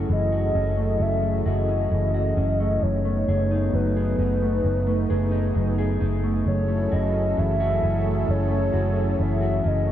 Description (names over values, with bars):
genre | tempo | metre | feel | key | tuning
dream pop | 66 BPM | 4/4 | straight | F# dorian | A4 = 441 Hz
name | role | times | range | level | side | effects
warm analog pad | sustained chords | 0.0-9.9 s | F#3 to A4 | -29 LUFS | right 2 dB | chorus
mellow electric guitar | arpeggios | 0.0-9.9 s | F#2 to G#4 | -27 LUFS | left 2 dB | lush chorus, digital delay
vintage muted picked electric bass | bass | 0.0-9.9 s | F#1 | -24 LUFS | equal | none
hollow clarinet-like synth lead | melody | 0.1-9.9 s | B4 to E5 | -27 LUFS | left 1 dB | chorus, digital delay
room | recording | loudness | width
moderate huge ambient reverb, RT60 5.1 s | dark, warm production | -20 LUFS | side -11 dB against mid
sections
0.0-9.9 A section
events
none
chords
0.0 F#m7; 2.8 B13/F#; 6.5 F#m7